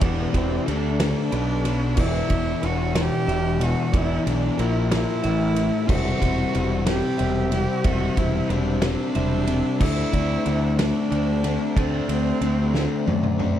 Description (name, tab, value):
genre	post-rock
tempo	61 BPM (dotted quarters)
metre	6/8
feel	straight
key	unclear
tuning	A4 = 435 Hz
part	bright cello	melody	0.0-13.4 s	B3 to G4	-28 LUFS	right 4 dB	tape echo
part	soft additive organ-like pad	sustained chords	0.0-13.6 s	C4 to F#6	-37 LUFS	right 2 dB	none
part	clean electric guitar	arpeggios	0.0-13.6 s	A2 to E4	-32 LUFS	right 1 dB	none
part	electric guitar through a small old amp	arpeggios	0.0-13.6 s	A4 to E5	-36 LUFS	right 9 dB	tape echo
part	overdriven semi-hollow guitar	riff	0.0-13.6 s	E2 to D4	-25 LUFS	left 5 dB	none
part	growling fingered electric bass	bass	0.0-13.5 s	E1 to F#2	-25 LUFS	right 1 dB	overdrive
part	loose indie drum kit	drums	0.0-13.5 s	crash cymbal, kick drum, ride cymbal, snare drum, toms	-27 LUFS	right 1 dB	none
room	small room ambience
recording	dark, warm production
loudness	-20 LUFS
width	side -11 dB against mid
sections	0.0-13.6 A section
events	drum fill 12.7-13.6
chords	0.0 Em7; 0.7 D5; 1.3 B5; 2.0 Em7; 4.6 A#5; 5.2 A5; 5.9 Cmaj7/E; 9.8 D7